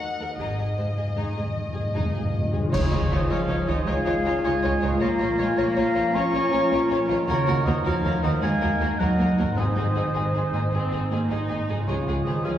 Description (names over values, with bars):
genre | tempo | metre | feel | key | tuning
cinematic, heroic adventure film score | 105 BPM (dotted quarters) | 12/8 | straight | Db major | A4 = 436 Hz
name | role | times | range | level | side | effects
warm symphonic violin section | melody | 0.0-12.5 s | Ab4 to Gb5 | -32 LUFS | left 3 dB | none
concert harp | arpeggios | 0.0-12.6 s | Ab2 to F5 | -34 LUFS | left 2 dB | none
rich symphonic violin section | second line | 0.2-12.5 s | Eb4 to C5 | -35 LUFS | left 2 dB | none
rich symphonic viola section | accompaniment | 0.2-12.5 s | Ab3 to Bb4 | -33 LUFS | right 2 dB | none
rich symphonic cello section | bass | 0.2-12.6 s | Eb2 to Db4 | -28 LUFS | right 2 dB | none
rich symphonic double bass section | bass | 0.4-12.5 s | Ab1 to Eb2 | -29 LUFS | right 1 dB | none
timpani | percussion | 0.4-3.3, 9.6-12.4 s | Ab2 to Db3 | -29 LUFS | equal | none
clear oboe | second line | 2.7-12.6 s | Db5 to Db6 | -30 LUFS | right 1 dB | none
mellow concert flute | second line | 2.7-12.6 s | Ab4 to Bb5 | -32 LUFS | left 3 dB | none
mellow French horn section | sustained chords | 2.7-12.6 s | Eb3 to F4 | -29 LUFS | left 2 dB | none
mellow trumpet section | stabs | 2.7-12.6 s | Ab4 to C5 | -33 LUFS | equal | none
clash cymbals and concert bass drum | percussion | 2.7-3.5 s | none | -31 LUFS | equal | none
room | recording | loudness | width
wet concert hall reverb, RT60 1.9 s | heard from further back in the room, small room ambience | -21 LUFS | side -11 dB against mid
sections
0.0-2.7 A section; 2.7-12.6 B section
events
timpani fill 0.4-2.7; band accent 2.7-3.1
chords
0.4 Ab5; 2.7 Dbadd9; 5.0 Bbm; 7.3 Ebm; 9.6 Ab; 11.9 Db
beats
| 0.41 0.98 1.56 2.14 | 2.72 3.30 3.87 4.44 | 5.01 5.58 6.14 6.71 | 7.28 7.84 8.42 8.99 | 9.56 10.14 10.72 11.30 | 11.88 12.45